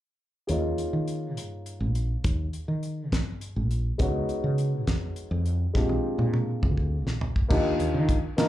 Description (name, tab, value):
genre	electric jazz fusion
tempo	68 BPM (dotted quarters)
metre	6/8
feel	straight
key	Eb mixolydian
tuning	A4 = 440 Hz
part	dark baby grand piano	accompaniment	0.5-8.5 s	Ab3 to Bb4	-29 LUFS	left 1 dB	slapback echo
part	woody fretless electric bass	bass	0.5-8.2 s	Bb1 to Eb3	-27 LUFS	equal	none
part	damped 70s drum kit	drums	0.5-8.5 s	crash cymbal, hi-hat, kick drum, snare drum, toms	-28 LUFS	equal	none
room	light reverb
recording	live gig heard through the venue's PA, club reverb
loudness	-25 LUFS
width	side -13 dB against mid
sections	0.5-7.5 A section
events	drum fill 5.8-7.5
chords	0.5 Eb9sus4; 4.0 Db9sus4; 5.8 Bb13; 7.5 Ebmaj9